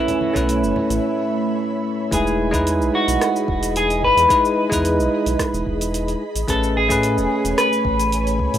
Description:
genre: sunset chillout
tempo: 110 BPM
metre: 4/4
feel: straight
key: E major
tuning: A4 = 440 Hz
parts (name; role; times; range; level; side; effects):
- clean electric guitar; melody; 0.0-8.6 s; E4 to B4; -20 LUFS; left 1 dB; lush chorus, digital delay
- bell-like tine electric piano; accompaniment; 0.0-8.6 s; G#3 to B4; -21 LUFS; right 1 dB; auto-pan, tape echo
- ethereal airy pad; sustained chords; 0.0-8.6 s; A3 to B5; -27 LUFS; equal; ensemble chorus, built-in reverb
- smooth R&B drum kit; drums; 0.1-8.6 s; hi-hat, rim click, shaker; -27 LUFS; right 1 dB; overdrive
- congas; percussion; 0.1-0.9 s; none; -32 LUFS; equal; none
- round analog bass; bass; 0.4-8.6 s; E1 to A2; -24 LUFS; equal; tube saturation
- electronic kick drum; drums; 0.4-8.5 s; none; -28 LUFS; equal; overdrive
room: light reverb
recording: rough home demo mix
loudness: -17 LUFS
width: side -10 dB against mid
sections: 0.0-2.1 A section; 2.1-8.6 B section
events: break 1.0-2.1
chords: 0.0 B9sus4; 2.1 Emaj7; 6.2 Amaj9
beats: 0.49 1.03 1.58 | 2.12 2.67 3.21 3.76 | 4.30 4.85 5.40 5.94 | 6.49 7.03 7.58 8.12

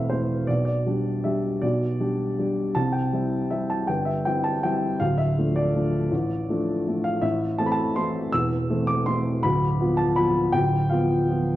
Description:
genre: classical, piano waltz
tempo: 161 BPM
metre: 3/4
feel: uneven beats, rubato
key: A minor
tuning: A4 = 439 Hz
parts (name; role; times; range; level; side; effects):
- warm upright piano; solo; 0.0-11.6 s; D1 to E6; -21 LUFS; equal; none
room: moderate recital hall reverb, RT60 1.4 s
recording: dark, warm production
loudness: -21 LUFS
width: side -14 dB against mid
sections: 0.0-11.6 A section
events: none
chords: 0.5 G/B; 2.8 C; 5.0 Dm; 7.2 Am; 9.4 Bdim/D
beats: 0.10 | 0.48 0.86 1.25 | 1.63 2.00 2.38 | 2.75 3.13 3.52 | 3.89 4.26 4.65 | 5.01 5.38 5.75 | 6.12 6.49 6.87 | 7.23 7.60 7.97 | 8.34 8.70 9.08 | 9.45 9.80 10.17 | 10.54 10.91 11.29

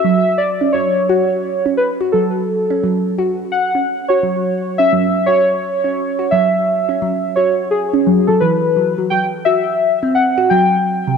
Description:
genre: IDM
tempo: 86 BPM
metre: 4/4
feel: swing 62% on 16ths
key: F# minor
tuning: A4 = 440 Hz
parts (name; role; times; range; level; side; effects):
- warbly lo-fi synth keys; melody; 0.0-11.2 s; G#4 to G5; -15 LUFS; left 1 dB; chorus, ping-pong delay
- harp-like synth pluck; arpeggios; 0.0-11.1 s; C3 to F#4; -18 LUFS; right 2 dB; chorus, phaser
room: moderate echo chamber reverb, RT60 2.2 s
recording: dark, warm production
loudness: -13 LUFS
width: side -6 dB against mid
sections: 0.0-11.2 A section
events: none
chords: 0.0 F#7(no3); 9.1 C(#11)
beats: 0.04 | 0.74 1.44 2.14 2.83 | 3.53 4.23 4.93 5.62 | 6.32 7.02 7.72 8.41 | 9.11 9.81 10.51

